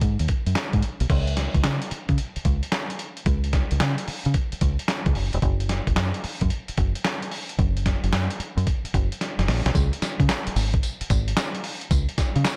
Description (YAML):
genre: R&B, new jack swing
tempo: 111 BPM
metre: 4/4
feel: swing 66% on 16ths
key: unclear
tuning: A4 = 441 Hz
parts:
  - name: deep dub fingered electric bass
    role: bass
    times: 0.0-12.4 s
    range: E1 to C#3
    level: -26 LUFS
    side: equal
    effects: none
  - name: dusty soul sampler-style drum kit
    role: drums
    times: 0.0-12.6 s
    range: crash cymbal, handclaps, hi-hat, kick drum, snare drum, tambourine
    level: -27 LUFS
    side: equal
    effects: none
room: little or no reverb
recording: none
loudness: -24 LUFS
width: mono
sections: 0.0-1.1 A section; 1.1-9.7 B section; 9.7-12.6 C section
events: drum fill 9.2-9.7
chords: none